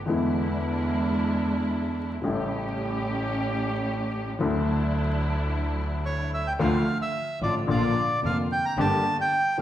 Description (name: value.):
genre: tango.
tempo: 111 BPM.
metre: 4/4.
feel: rubato.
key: D major, D minor from 6.6 s.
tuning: A4 = 441 Hz.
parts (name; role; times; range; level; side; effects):
warm baby grand piano; accompaniment; 0.1-9.6 s; F1 to G4; -28 LUFS; left 2 dB; none.
muted studio string section; stabs; 0.1-9.6 s; F#3 to G4; -31 LUFS; right 1 dB; none.
clear double bass; bass; 0.1-9.6 s; F1 to E2; -30 LUFS; right 1 dB; none.
bandoneon; melody; 6.1-9.6 s; C#5 to Bb5; -26 LUFS; right 1 dB; none.
room: wet recital hall reverb, RT60 1.4 s.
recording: recorded in a church or concert hall, vinyl crackle.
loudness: -24 LUFS.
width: side -12 dB against mid.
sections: 0.0-6.6 A section; 6.6-9.6 B section.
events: none.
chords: 0.1 E7; 2.2 A7; 4.4 Dadd9; 6.6 Dm; 7.7 Bb; 8.8 Gm.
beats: | 0.09 0.63 1.17 1.71 | 2.25 2.79 3.33 3.87 | 4.41 4.96 5.50 6.05 | 6.60 7.14 7.69 8.23 | 8.78 9.32.